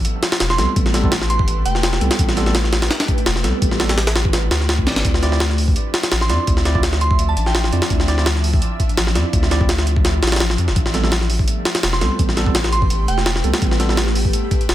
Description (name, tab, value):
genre	drum and bass, jungle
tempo	168 BPM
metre	4/4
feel	swing 54% on 16ths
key	D dorian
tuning	A4 = 441 Hz
part	ethereal airy pad	sustained chords	0.0-14.7 s	F3 to E5	-28 LUFS	equal	ensemble chorus, built-in reverb, phaser
part	saturated sub bass	bass	0.0-14.7 s	D1 to F2	-19 LUFS	equal	none
part	jungle sampler-style drum kit	drums	0.0-14.7 s	hi-hat, kick drum, snare drum	-18 LUFS	equal	none
part	glassy synth bell	melody	0.5-2.2, 6.2-7.6, 11.9-13.6 s	G5 to C6	-26 LUFS	right 2 dB	chorus, dub echo
part	mellow tine electric piano	stabs	0.6-14.0 s	G3 to D5	-26 LUFS	right 3 dB	medium stereo tremolo, vintage 12-bit sampler grit, dub echo
room	little or no reverb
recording	none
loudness	-15 LUFS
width	side -13 dB against mid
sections	0.0-14.7 A section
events	none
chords	0.0 Am9; 5.0 Dm9; 10.8 Am9